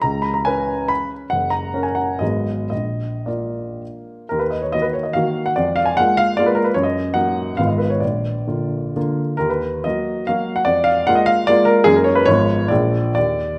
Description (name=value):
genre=classical, romantic triple-time dance for piano with dotted rhythms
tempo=104-162 BPM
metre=3/4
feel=rubato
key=Eb minor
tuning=A4 = 440 Hz
part: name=warm baby grand piano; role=solo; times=0.0-13.6 s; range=Gb1 to Cb6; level=-19 LUFS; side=equal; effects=none
room=wet recital hall reverb, RT60 1.4 s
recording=none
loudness=-19 LUFS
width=mono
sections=0.0-4.3 A section; 4.3-13.6 B section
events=none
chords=0.0 Db5; 1.3 Gb; 2.2 Abm7; 2.7 Bb; 4.3 Ebm; 5.6 Bb5/F; 6.8 Ebm/Gb; 7.6 Fm7b5/Ab; 8.0 Bb; 9.4 Ebm; 10.7 Bb5/F; 11.9 Ebm/Gb; 12.3 Fm7b5/Ab; 12.7 Bb7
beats=| 0.04 0.47 0.90 | 1.32 1.74 2.21 | 2.71 3.28 3.82 | 4.31 4.74 5.16 | 5.57 5.97 6.37 | 6.76 7.15 7.58 | 8.02 8.48 8.96 | 9.41 9.85 10.28 | 10.67 11.08 11.48 | 11.87 12.27 12.70 | 13.16